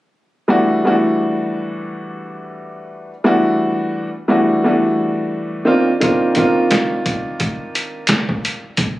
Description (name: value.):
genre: hip hop, boom-bap hip-hop.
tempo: 87 BPM.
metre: 4/4.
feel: swing 58% on 16ths.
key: unclear.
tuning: A4 = 440 Hz.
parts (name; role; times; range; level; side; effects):
warm upright piano; accompaniment; 0.5-8.6 s; Eb3 to F#4; -16 LUFS; equal; high-pass filter, low-pass filter.
trip hop sampler-style drum kit; drums; 6.0-9.0 s; hi-hat, kick drum, snare drum; -18 LUFS; equal; none.
room: light reverb, digital ambience.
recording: recorded on a phone in the room, club reverb, compression.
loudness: -15 LUFS.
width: side -16 dB against mid.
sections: 0.5-9.0 A section.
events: none.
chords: 0.5 Em11; 5.7 Cm11.